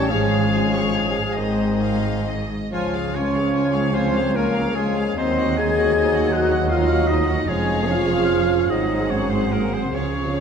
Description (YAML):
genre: classical, slow romantic movement for symphony orchestra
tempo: 42-55 BPM (dotted quarters)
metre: 6/8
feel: rubato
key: Db major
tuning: A4 = 441 Hz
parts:
  - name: rich chamber violin section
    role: melody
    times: 0.0-10.4 s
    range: Eb5 to A5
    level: -32 LUFS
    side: left 7 dB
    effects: none
  - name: bright oboe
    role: second line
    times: 0.0-10.4 s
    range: F4 to Ab5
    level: -30 LUFS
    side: right 1 dB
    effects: none
  - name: clear chamber violin section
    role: second line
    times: 0.0-10.4 s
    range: C5 to Db6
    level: -34 LUFS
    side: left 2 dB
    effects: none
  - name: concert flute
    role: second line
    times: 0.0-10.4 s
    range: F5 to Ab6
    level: -32 LUFS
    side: left 1 dB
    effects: none
  - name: mellow clarinet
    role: second line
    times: 0.0-10.4 s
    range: C5 to Eb5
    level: -30 LUFS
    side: left 4 dB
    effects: none
  - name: dark chamber viola section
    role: accompaniment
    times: 0.0-10.4 s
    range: Eb4 to Ab4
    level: -31 LUFS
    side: right 3 dB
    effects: none
  - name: warm bassoon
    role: accompaniment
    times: 0.0-10.4 s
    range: Eb3 to G3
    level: -31 LUFS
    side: equal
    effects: none
  - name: clear trombone section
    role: sustained chords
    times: 0.0-10.4 s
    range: Eb3 to Eb4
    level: -32 LUFS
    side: right 3 dB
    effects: none
  - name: warm French horn section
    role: sustained chords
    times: 0.0-10.4 s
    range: F3 to Ab4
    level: -22 LUFS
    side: left 1 dB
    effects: none
  - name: clear chamber double bass section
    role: bass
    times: 0.1-10.4 s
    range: F1 to Eb2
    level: -27 LUFS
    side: right 4 dB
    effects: none
  - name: warm chamber cello section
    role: bass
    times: 0.1-10.4 s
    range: Db2 to Db3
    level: -25 LUFS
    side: right 1 dB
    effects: none
room: wet concert hall reverb, RT60 2.3 s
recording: none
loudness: -18 LUFS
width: side -7 dB against mid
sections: 0.0-10.4 A section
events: none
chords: 0.1 Db/Ab; 1.4 Ab; 2.7 Db; 5.2 Cdim/Eb; 7.5 Db/F; 8.7 Ab7